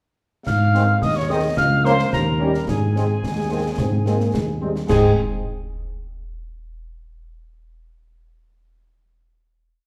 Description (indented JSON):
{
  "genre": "military-style march for wind band",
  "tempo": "109 BPM",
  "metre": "2/4",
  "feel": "straight",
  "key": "Ab major",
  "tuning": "A4 = 441 Hz",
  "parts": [
    { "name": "mellow trumpet section", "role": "melody", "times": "0.5-5.1 s", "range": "Ab4 to F5", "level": "-28 LUFS", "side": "equal", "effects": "none" },
    { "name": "wooden piccolo", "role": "second line", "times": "0.5-5.2 s", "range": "Ab5 to F6", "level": "-29 LUFS", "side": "equal", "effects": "none" },
    { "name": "dark tuba", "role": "bass", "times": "0.5-5.1 s", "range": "Db2 to Ab2", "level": "-23 LUFS", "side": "equal", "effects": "none" },
    { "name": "concert snare drum, clash cymbals and concert bass drum", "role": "drums", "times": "0.5-5.2 s", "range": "none", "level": "-30 LUFS", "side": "equal", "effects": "none" },
    { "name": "warm French horn section", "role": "accompaniment", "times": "0.7-5.1 s", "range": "C4 to Bb4", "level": "-28 LUFS", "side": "equal", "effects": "none" },
    { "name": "bright trombone section", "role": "sustained chords", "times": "0.7-5.1 s", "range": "Eb3 to Db4", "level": "-30 LUFS", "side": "equal", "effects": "none" },
    { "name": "mellow euphonium", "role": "second line", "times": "3.2-4.7 s", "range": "G3 to C4", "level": "-29 LUFS", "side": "equal", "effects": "none" }
  ],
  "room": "wet large studio reverb, RT60 1.3 s",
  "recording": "heard from further back in the room",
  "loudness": "-20 LUFS",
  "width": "mono",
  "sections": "0.5-4.9 A section; 4.9-6.0 final chord",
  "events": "none",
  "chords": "0.5 Ab; 1.6 Bbm/Db; 2.1 Eb7; 2.7 Ab",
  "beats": "| 0.47 1.02 | 1.58 2.13 | 2.68 3.23 | 3.79 4.34 | 4.89"
}